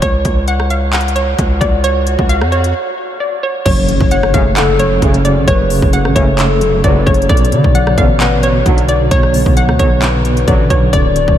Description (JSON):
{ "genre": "hip hop, trap", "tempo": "132 BPM", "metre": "4/4", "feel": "half-time", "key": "F# harmonic minor", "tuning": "A4 = 435 Hz", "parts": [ { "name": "hollow square pluck", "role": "melody", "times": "0.0-11.4 s", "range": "C#5 to F#5", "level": "-17 LUFS", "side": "right 1 dB", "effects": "chorus, low-pass filter, ping-pong delay" }, { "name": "distorted 808-style bass", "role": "bass", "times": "0.0-11.4 s", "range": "D1 to D3", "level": "-16 LUFS", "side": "equal", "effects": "distortion" }, { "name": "trap drum kit", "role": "drums", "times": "0.0-11.4 s", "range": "crash cymbal, handclaps, hi-hat, kick drum, rim click", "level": "-16 LUFS", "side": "equal", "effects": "none" }, { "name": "swell and impact", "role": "sound effects", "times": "1.0-5.5 s", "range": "none", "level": "-25 LUFS", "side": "equal", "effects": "none" }, { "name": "hollow clarinet-like synth lead", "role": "second line", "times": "3.7-11.4 s", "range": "A4 to D5", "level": "-18 LUFS", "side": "left 5 dB", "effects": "chorus, ping-pong delay" }, { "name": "tine electric piano", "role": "accompaniment", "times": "3.7-11.4 s", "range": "F#2 to B3", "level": "-16 LUFS", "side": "right 1 dB", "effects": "overdrive, fast tremolo, low-pass filter" }, { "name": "mellow brass ensemble", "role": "stabs", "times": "4.3-10.6 s", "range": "A1 to F#3", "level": "-25 LUFS", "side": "right 2 dB", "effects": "none" } ], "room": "moderate cathedral reverb, RT60 6.7 s", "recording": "dreamy mix soaked in reverb", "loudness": "-10 LUFS", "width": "side -10 dB against mid", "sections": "0.0-3.7 A section; 3.7-11.4 B section", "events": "swell 1.0-3.7; break 2.7-3.7; impact 3.7-5.5", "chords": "0.0 C#; 3.7 F#m; 7.3 Bm" }